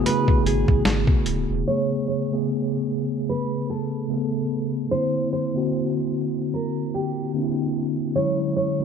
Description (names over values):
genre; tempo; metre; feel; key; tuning
lo-fi hip hop; 74 BPM; 4/4; swing 59% on 16ths; unclear; A4 = 438 Hz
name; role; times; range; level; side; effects
mellow tine electric piano; accompaniment; 0.0-8.8 s; C#3 to A4; -23 LUFS; equal; medium stereo tremolo, cassette tape, low-pass filter
nylon-string guitar; melody; 0.1-8.8 s; G4 to C#5; -28 LUFS; right 2 dB; low-pass filter, tape echo
dusty soul sampler-style drum kit; drums; 0.1-1.5 s; hi-hat, kick drum, snare drum; -20 LUFS; equal; none
warm sub bass; bass; 0.4-1.6 s; D1 to A1; -26 LUFS; equal; none
room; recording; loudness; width
light reverb; low-pass filter; -21 LUFS; side -7 dB against mid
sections
0.0-1.7 A section; 1.7-8.8 B section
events
filter sweep 1.7-8.8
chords
0.0 Amaj9; 4.9 C9; 8.1 Dmaj9#11